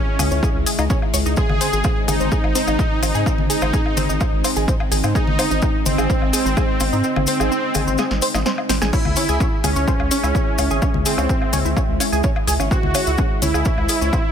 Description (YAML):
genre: melodic techno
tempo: 127 BPM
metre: 4/4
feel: straight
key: C# harmonic minor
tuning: A4 = 440 Hz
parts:
  - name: soft supersaw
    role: melody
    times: 0.0-14.3 s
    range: B#3 to G#4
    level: -24 LUFS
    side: equal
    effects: sidechain pumping, ping-pong delay
  - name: dark analog pad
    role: sustained chords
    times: 0.0-14.3 s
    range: G#3 to E5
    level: -27 LUFS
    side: equal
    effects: chorus, phaser, sidechain pumping
  - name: bowed-like drone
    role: drone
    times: 0.1-14.3 s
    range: C#3 to G#3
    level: -31 LUFS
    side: left 2 dB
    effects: built-in reverb, sidechain pumping
  - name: tight sequenced synth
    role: arpeggios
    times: 0.2-14.2 s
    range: B#3 to C#6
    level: -25 LUFS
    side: right 1 dB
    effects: chorus, cassette tape, sidechain pumping, ping-pong delay
  - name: round analog bass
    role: bass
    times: 0.2-14.1 s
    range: G#1 to G#2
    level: -22 LUFS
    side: equal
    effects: sidechain pumping
  - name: house drum kit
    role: drums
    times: 0.2-14.2 s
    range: congas, crash cymbal, hi-hat, snare drum, woodblock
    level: -25 LUFS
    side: left 4 dB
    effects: sidechain pumping on cymbals, studio ambience, sidechain pumping on perc, sidechain pumping on hats
  - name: maracas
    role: percussion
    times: 0.2-14.2 s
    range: none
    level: -28 LUFS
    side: left 4 dB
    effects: none
  - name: electronic kick drum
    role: drums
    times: 0.4-14.2 s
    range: none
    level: -21 LUFS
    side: equal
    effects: studio ambience
room: light reverb, digital ambience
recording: none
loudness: -16 LUFS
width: side -8 dB against mid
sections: 0.0-14.3 A section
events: kick drops out 7.0-8.9; drum fill 8.0-8.9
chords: 0.0 C#m; 1.4 G#; 8.9 C#m